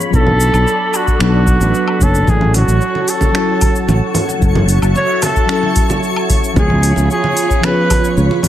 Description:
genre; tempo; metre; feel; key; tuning
sunset chillout; 112 BPM; 4/4; straight; A major; A4 = 440 Hz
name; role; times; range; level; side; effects
mellow FM electric piano; accompaniment; 0.0-8.5 s; E#3 to C#5; -19 LUFS; moving between left 4 dB and right 5 dB; chorus, auto-pan, vintage 12-bit sampler grit
soft string machine; sustained chords; 0.0-8.5 s; E#4 to B5; -21 LUFS; right 1 dB; phaser, ensemble chorus
smooth R&B drum kit; drums; 0.0-8.5 s; finger snaps, hi-hat, shaker, woodblock; -22 LUFS; left 1 dB; none
sustaining fretless electric bass; bass; 0.1-8.3 s; F#1 to C#2; -13 LUFS; equal; none
electronic kick drum; drums; 0.1-8.0 s; none; -16 LUFS; equal; none
clear flugelhorn; melody; 0.2-8.2 s; F#4 to C#5; -18 LUFS; right 1 dB; ping-pong delay
congas; percussion; 0.3-8.5 s; none; -21 LUFS; right 2 dB; none
twinkling granular texture; texture; 2.3-8.5 s; C#5 to C#6; -28 LUFS; left 1 dB; built-in reverb
room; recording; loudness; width
light reverb; none; -11 LUFS; side -12 dB against mid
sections
0.0-8.5 A section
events
none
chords
0.1 Bm7; 2.3 A6; 4.4 F#m7; 6.6 C#7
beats
| 0.14 0.67 1.21 1.74 | 2.28 2.81 3.35 3.88 | 4.42 4.96 5.49 6.03 | 6.56 7.10 7.63 8.17

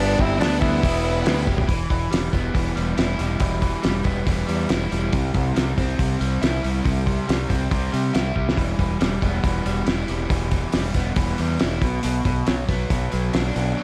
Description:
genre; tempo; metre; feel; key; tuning
classic rock; 139 BPM; 4/4; straight; E minor; A4 = 440 Hz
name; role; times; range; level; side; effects
growling tenor saxophone; melody; 0.0-1.4 s; D4 to E4; -27 LUFS; equal; slapback echo
octave-fuzz lead guitar; second line; 0.0-1.4 s; B3 to C4; -30 LUFS; equal; distortion
overdriven electric guitar; riff; 0.0-13.8 s; B2 to G4; -27 LUFS; equal; none
growling fingered electric bass; bass; 0.0-13.7 s; E1 to C3; -27 LUFS; equal; overdrive
cloth-damped thuddy drum kit; drums; 0.2-13.7 s; hi-hat, kick drum, snare drum, toms; -26 LUFS; equal; none
room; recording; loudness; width
light reverb, small room ambience; none; -22 LUFS; mono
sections
0.0-1.7 A section; 1.7-13.8 B section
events
drum fill 1.5, 8.4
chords
0.0 G; 0.8 Em; 5.1 C; 8.6 Em; 11.8 Bm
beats
0.41 0.84 1.26 | 1.69 2.12 2.55 2.98 | 3.41 3.84 4.27 4.70 | 5.13 5.56 5.99 6.42 | 6.85 7.28 7.71 8.15 | 8.58 9.01 9.44 9.87 | 10.30 10.74 11.17 11.60 | 12.04 12.47 12.90 13.33 | 13.77

